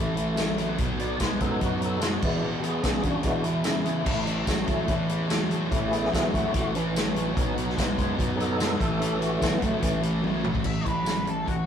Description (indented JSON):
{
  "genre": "classic rock",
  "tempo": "146 BPM",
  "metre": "4/4",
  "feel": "straight",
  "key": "unclear",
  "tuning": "A4 = 439 Hz",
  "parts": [
    { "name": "tonewheel organ", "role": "sustained chords", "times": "0.0-10.0 s", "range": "E3 to D5", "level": "-29 LUFS", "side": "left 1 dB", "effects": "slow rotary speaker, overdrive, chorus vibrato" },
    { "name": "overdriven electric guitar", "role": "riff", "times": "0.0-11.6 s", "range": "E2 to G#3", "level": "-33 LUFS", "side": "left 4 dB", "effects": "none" },
    { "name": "sludgy distorted guitar", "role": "riff", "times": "0.0-11.6 s", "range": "E2 to G#3", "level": "-32 LUFS", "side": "right 6 dB", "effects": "overdrive" },
    { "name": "fuzz fingered electric bass", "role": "bass", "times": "0.0-11.7 s", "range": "A1 to F#2", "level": "-31 LUFS", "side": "equal", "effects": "overdrive" },
    { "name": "vintage drum kit", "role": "drums", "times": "0.2-11.6 s", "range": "crash cymbal, hi-hat, kick drum, snare drum, tambourine, toms", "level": "-28 LUFS", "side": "left 1 dB", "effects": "none" },
    { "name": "octave-fuzz lead guitar", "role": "second line", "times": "10.7-11.7 s", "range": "F#4 to E5", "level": "-30 LUFS", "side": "equal", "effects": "distortion" }
  ],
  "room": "moderate studio reverb, RT60 0.7 s",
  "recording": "rough rehearsal-room recording, warm saturation",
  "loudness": "-23 LUFS",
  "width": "side -8 dB against mid",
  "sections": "0.0-10.6 A section; 10.6-11.7 B section",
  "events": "tonewheel organ solo 0.0-10.6; drum fill 10.2-10.6",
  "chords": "0.0 A5; 0.8 B; 2.2 E; 4.1 A; 7.4 B; 8.8 A; 10.6 A5",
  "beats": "0.37 | 0.78 1.20 1.61 2.02 | 2.43 2.84 3.25 3.66 | 4.07 4.49 4.90 5.31 | 5.72 6.13 6.54 6.95 | 7.36 7.77 8.18 8.59 | 9.00 9.41 9.82 10.23 | 10.65 11.06 11.47"
}